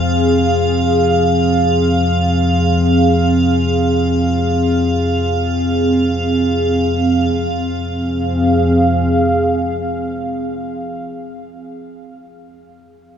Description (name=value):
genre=ambient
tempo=free time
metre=none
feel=none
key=unclear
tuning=A4 = 440 Hz
part: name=dark analog pad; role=sustained chords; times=0.0-10.8 s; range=C4 to F5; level=-16 LUFS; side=right 1 dB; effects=chorus
part: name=deep rumbling drone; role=drone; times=0.0-10.5 s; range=F2 to F3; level=-18 LUFS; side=left 2 dB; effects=built-in reverb
part: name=icy glass pad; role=texture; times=0.0-7.4 s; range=F5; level=-22 LUFS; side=right 3 dB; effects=chorus, built-in reverb
room=wet huge ambient reverb, RT60 7.3 s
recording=small room ambience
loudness=-13 LUFS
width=side -8 dB against mid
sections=0.0-7.3 A section; 7.3-12.2 B section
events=none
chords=0.0 Fm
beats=free time